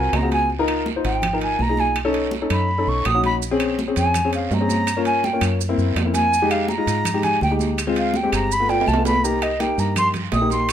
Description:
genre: Afro-Cuban jazz.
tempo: 165 BPM.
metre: 4/4.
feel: straight.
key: unclear.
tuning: A4 = 441 Hz.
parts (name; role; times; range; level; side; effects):
concert flute; melody; 0.0-10.7 s; Eb5 to Eb6; -21 LUFS; right 2 dB; none.
warm upright piano; accompaniment; 0.0-10.7 s; Ab3 to C5; -23 LUFS; left 3 dB; none.
deep dub fingered electric bass; bass; 0.0-10.7 s; G1 to Ab2; -24 LUFS; equal; none.
claves; percussion; 0.1-10.7 s; none; -34 LUFS; left 2 dB; none.
congas; percussion; 0.1-10.7 s; none; -28 LUFS; right 1 dB; none.
guiro; percussion; 0.1-10.7 s; none; -35 LUFS; right 9 dB; none.
timbales; percussion; 0.1-10.7 s; none; -29 LUFS; right 5 dB; none.
maracas; percussion; 3.4-10.7 s; none; -32 LUFS; right 11 dB; none.
room: light reverb.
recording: minimal, uncompressed stereo recording.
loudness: -18 LUFS.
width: side -10 dB against mid.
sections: 0.0-9.2 A section; 9.2-10.7 A section.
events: flute solo 0.0-10.7; drum fill 8.7-9.2.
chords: 0.0 Ab13; 0.5 Db69; 2.0 B9; 3.4 Bbm9; 4.9 Gm7b5; 5.6 Gb7#11; 6.3 Fm9; 7.8 Dm7b5; 8.5 G7; 9.2 Cm7.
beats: 0.14 | 0.50 0.87 1.23 1.60 | 1.96 2.33 2.69 3.06 | 3.42 3.78 4.15 4.51 | 4.88 5.24 5.60 5.97 | 6.33 6.69 7.06 7.42 | 7.78 8.15 8.51 8.87 | 9.23 9.60 9.96 10.32 | 10.69.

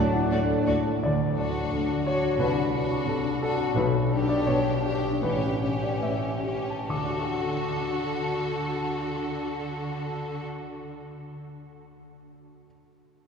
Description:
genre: classical.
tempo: 65-89 BPM.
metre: 4/4.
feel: rubato.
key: D major.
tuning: A4 = 440 Hz.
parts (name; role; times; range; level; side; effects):
warm grand piano; melody; 0.0-12.7 s; A1 to D6; -27 LUFS; left 2 dB; none.
warm symphonic violin section; melody; 0.0-0.8 s; D5; -39 LUFS; left 1 dB; none.
clear symphonic violin section; second line; 0.0-10.5 s; C#4 to A4; -31 LUFS; left 1 dB; none.
dark clarinet; second line; 0.0-0.7 s; F#5; -42 LUFS; right 1 dB; none.
hollow silver concert flute; second line; 0.0-0.6 s; A5; -40 LUFS; left 1 dB; none.
warm oboe; second line; 0.0-0.6 s; D5; -39 LUFS; right 2 dB; none.
rich studio viola section; accompaniment; 0.0-0.8 s; A3; -33 LUFS; right 2 dB; none.
warm bassoon; accompaniment; 0.0-0.7 s; F#3; -39 LUFS; equal; none.
mellow French horn section; sustained chords; 0.0-0.7 s; F#3 to D4; -39 LUFS; right 3 dB; none.
rich symphonic cello section; bass; 0.0-10.5 s; D2 to D4; -34 LUFS; right 1 dB; none.
warm symphonic double bass section; bass; 0.0-0.8 s; D2; -37 LUFS; right 2 dB; none.
room: wet cathedral reverb, RT60 5.2 s.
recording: recorded in a church or concert hall.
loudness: -24 LUFS.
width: side -6 dB against mid.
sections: 0.0-1.0 A section; 1.0-6.9 B section; 6.9-10.2 C section.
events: slowing down 0.0-6.9.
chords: 0.0 D; 2.4 D7/C; 3.8 G/B; 5.2 A9; 6.9 D.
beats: 0.32 | 1.03 1.72 2.40 3.08 | 3.76 4.47 5.22 6.02 | 6.90 7.73 8.56 9.39.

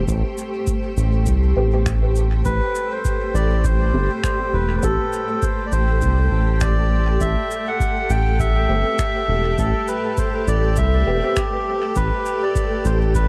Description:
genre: ambient dub.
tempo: 101 BPM.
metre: 4/4.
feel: swing 58% on 16ths.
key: A minor.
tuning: A4 = 440 Hz.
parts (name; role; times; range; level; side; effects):
granular cloud pad; sustained chords; 0.0-13.3 s; A3 to C5; -28 LUFS; equal; built-in reverb, cassette tape.
round analog bass; bass; 0.0-13.3 s; E1 to C2; -21 LUFS; equal; none.
cabasa and finger snaps; drums; 0.1-13.3 s; none; -37 LUFS; equal; cassette tape, dub echo.
electronic kick drum; drums; 0.1-13.3 s; none; -27 LUFS; equal; cassette tape.
filtered dub chord stab; stabs; 1.6-5.0, 8.7-11.3 s; A3 to G4; -30 LUFS; equal; phaser, ensemble chorus, cassette tape, dub echo, plate reverb.
melodica; melody; 2.5-13.3 s; G4 to G5; -26 LUFS; equal; cassette tape, dub echo, plate reverb.
room: light reverb.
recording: home recording on cassette.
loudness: -20 LUFS.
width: mono.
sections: 0.0-13.3 A section.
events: none.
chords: 0.0 Am7.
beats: | 0.08 0.67 1.26 1.86 | 2.45 3.05 3.64 4.24 | 4.83 5.42 6.02 6.61 | 7.21 7.80 8.39 8.99 | 9.58 10.18 10.77 11.36 | 11.96 12.55 13.15.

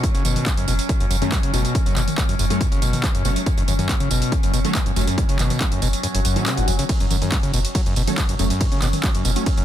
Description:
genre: driving peak-time techno.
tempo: 140 BPM.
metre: 4/4.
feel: straight.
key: F# minor.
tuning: A4 = 440 Hz.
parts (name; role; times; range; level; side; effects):
screaming distorted acid line; riff; 0.0-9.6 s; F#2 to F#3; -25 LUFS; equal; distortion, chorus, cassette tape, sidechain pumping, ping-pong delay.
overtone-sweeping drone; drone; 0.0-9.6 s; F#3 to C#4; -29 LUFS; equal; chorus, built-in reverb, sidechain pumping.
electronic kick drum; drums; 0.0-9.6 s; none; -21 LUFS; equal; overdrive, small room ambience.
techno drum kit; drums; 0.0-9.6 s; handclaps, hi-hat, ride cymbal, tambourine, toms; -26 LUFS; right 1 dB; overdrive, small room ambience.
saturated sub bass; bass; 0.1-9.6 s; F#1; -24 LUFS; equal; tube saturation, sidechain pumping, low-pass filter.
rave stab; stabs; 1.2-9.4 s; F#3 to C#4; -29 LUFS; equal; none.
swell; sound effects; 6.2-6.9 s; none; -34 LUFS; left 4 dB; none.
room: digital ambience.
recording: dense, heavily limited modern master.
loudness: -18 LUFS.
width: side -11 dB against mid.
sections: 0.0-9.6 A section.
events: kick drops out 6.0-6.9; swell 6.2-6.9.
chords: 0.0 F#m.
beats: | 0.04 0.46 0.89 1.32 | 1.75 2.18 2.61 3.04 | 3.46 3.89 4.32 4.75 | 5.18 5.61 6.04 6.46 | 6.89 7.32 7.75 8.18 | 8.61 9.04 9.46.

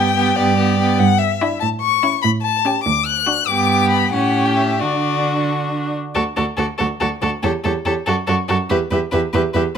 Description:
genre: quick classical-period movement for string quartet.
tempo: 94 BPM (dotted quarters).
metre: 6/8.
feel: rubato.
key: D major.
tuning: A4 = 442 Hz.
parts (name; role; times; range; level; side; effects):
warm violin; melody; 0.0-9.6 s; C#5 to F#6; -20 LUFS; left 11 dB; none.
clear violin; second line; 0.0-9.8 s; E4 to B4; -22 LUFS; left 1 dB; none.
rich viola; accompaniment; 0.0-9.6 s; B3 to G4; -22 LUFS; right 2 dB; none.
warm cello; bass; 0.0-9.6 s; D2 to D3; -21 LUFS; right 4 dB; none.
room: light reverb.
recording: none.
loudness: -15 LUFS.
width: side -7 dB against mid.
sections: 0.0-6.2 A section; 6.2-9.8 B section.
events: none.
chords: 0.0 G; 1.0 Em7/G; 1.6 A; 2.9 D; 3.5 G; 4.1 A7; 4.8 D; 7.4 A7/E; 8.1 D/F#; 8.7 Em.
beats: 0.37 | 1.00 1.62 | 2.24 2.85 | 3.48 4.13 | 4.81 5.49 | 6.16 6.79 | 7.43 8.07 | 8.70 9.34.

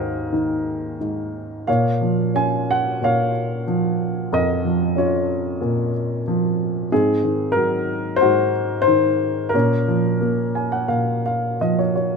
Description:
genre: classical, lyrical solo piano.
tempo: 92 BPM.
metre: 4/4.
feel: uneven beats, rubato.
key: Bb minor.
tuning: A4 = 444 Hz.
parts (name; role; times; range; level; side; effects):
dark upright piano; solo; 0.0-12.2 s; Eb2 to Ab5; -18 LUFS; equal; none.
room: light reverb.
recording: close, detailed microphones.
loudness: -18 LUFS.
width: side -4 dB against mid.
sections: 0.0-12.2 A section.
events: upright piano fill 10.2-12.2.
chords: 0.0 Ab7; 1.7 Bbm; 6.9 Ab7; 9.5 Bbm.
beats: 0.33 1.00 | 1.68 2.35 3.03 3.68 | 4.33 4.97 5.61 6.26 | 6.91 7.56 8.21 8.87 | 9.54 10.21 10.90 11.62.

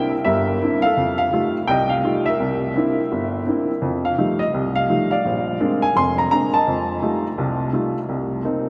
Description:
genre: solo jazz.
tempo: 168 BPM.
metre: 4/4.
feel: swing 64% on 8ths.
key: F mixolydian.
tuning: A4 = 440 Hz.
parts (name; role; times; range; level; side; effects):
warm upright piano; solo; 0.0-8.7 s; F1 to C6; -20 LUFS; equal; none.
room: wet cathedral reverb, RT60 6.5 s.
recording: in a vast, echoing space.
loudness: -20 LUFS.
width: mono.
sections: 0.0-3.8 A section; 3.8-8.7 A section.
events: none.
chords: 0.0 C9; 1.0 F9; 2.4 C9; 3.8 F9; 5.2 Bb9; 6.7 F9; 8.1 Cm7.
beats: 0.26 0.61 | 0.97 1.32 1.68 2.04 | 2.39 2.75 3.11 3.46 | 3.82 4.17 4.53 4.89 | 5.24 5.60 5.96 6.31 | 6.67 7.02 7.38 7.74 | 8.09 8.45.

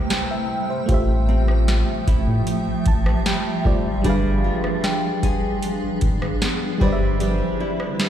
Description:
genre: contemporary R&B.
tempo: 76 BPM.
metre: 4/4.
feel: straight.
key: unclear.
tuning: A4 = 440 Hz.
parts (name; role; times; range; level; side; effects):
mellow FM electric piano; accompaniment; 0.0-8.1 s; G3 to A5; -26 LUFS; right 2 dB; chorus.
granular cloud pad; sustained chords; 0.0-8.1 s; C3 to G5; -26 LUFS; right 1 dB; built-in reverb, sidechain pumping.
nylon-string guitar; arpeggios; 0.0-8.1 s; G3 to B4; -28 LUFS; left 2 dB; tape echo.
worn celesta; texture; 0.0-8.1 s; D5 to E6; -32 LUFS; left 5 dB; stereo widening, tape echo.
booming analog drum machine; drums; 0.1-8.1 s; hi-hat, kick drum, rim click, snare drum; -23 LUFS; equal; overdrive.
smooth synth bass; bass; 0.9-7.4 s; G1 to A2; -21 LUFS; equal; none.
room: digital ambience.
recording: played on a big sound system in a bare room, stone room reverb.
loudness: -18 LUFS.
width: side -10 dB against mid.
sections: 0.0-8.1 A section.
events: FM electric piano fill 2.5-4.0.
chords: 0.0 Am9; 0.9 Fmaj9/A; 4.0 G7b9; 6.8 Cmaj9/G.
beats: 0.10 | 0.89 1.68 2.47 3.26 | 4.05 4.84 5.63 6.42 | 7.21 8.00.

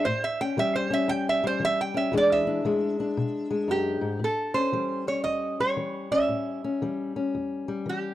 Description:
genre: acoustic country blues, solo or duo.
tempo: 115 BPM.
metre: 4/4.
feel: swing 66% on 8ths.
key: A mixolydian.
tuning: A4 = 440 Hz.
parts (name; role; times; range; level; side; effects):
lap resonator guitar; melody; 0.0-8.1 s; G4 to G5; -26 LUFS; right 2 dB; none.
fingerpicked old ladder-braced acoustic guitar; accompaniment; 0.0-8.1 s; E2 to D4; -28 LUFS; left 3 dB; none.
room: light reverb, studio ambience.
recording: dry, close 1970s-style studio recording.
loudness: -24 LUFS.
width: side -13 dB against mid.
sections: 0.0-4.2 A section; 4.2-8.1 B section.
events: resonator guitar played with a steel bar solo 0.0-4.2.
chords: 0.1 A7; 2.1 E7; 4.2 A7.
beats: | 0.05 0.57 1.09 1.61 | 2.13 2.64 3.16 3.68 | 4.20 4.72 5.25 5.77 | 6.29 6.81 7.33 7.85.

